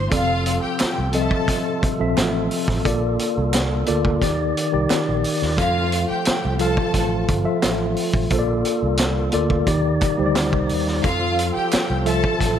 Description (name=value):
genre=lush 1970s-style soul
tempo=88 BPM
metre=4/4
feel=straight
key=F major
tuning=A4 = 440 Hz
part: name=rich studio string section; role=second line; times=0.0-12.6 s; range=F4 to A5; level=-25 LUFS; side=equal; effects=none
part: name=mellow tine electric piano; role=accompaniment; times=0.0-12.6 s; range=Eb3 to F5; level=-22 LUFS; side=left 2 dB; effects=medium stereo tremolo
part: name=fingered electric bass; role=bass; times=0.0-12.6 s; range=F1 to F2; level=-24 LUFS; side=right 1 dB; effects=none
part: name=tonewheel organ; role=sustained chords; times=0.1-12.6 s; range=C3 to D5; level=-30 LUFS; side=right 4 dB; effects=slow rotary speaker
part: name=vintage drum kit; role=drums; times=0.1-12.6 s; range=hi-hat, kick drum, snare drum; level=-23 LUFS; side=right 1 dB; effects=none
part: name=group handclap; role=percussion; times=0.8-11.9 s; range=none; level=-34 LUFS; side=right 9 dB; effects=none
room=light reverb, small room ambience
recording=none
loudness=-18 LUFS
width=side -9 dB against mid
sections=0.1-12.6 A section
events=none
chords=0.1 Fmaj7; 2.8 Bbmaj7; 4.2 Ebmaj7; 5.6 Fmaj7; 8.3 Bbmaj7; 9.7 Ebmaj7; 11.0 Fmaj7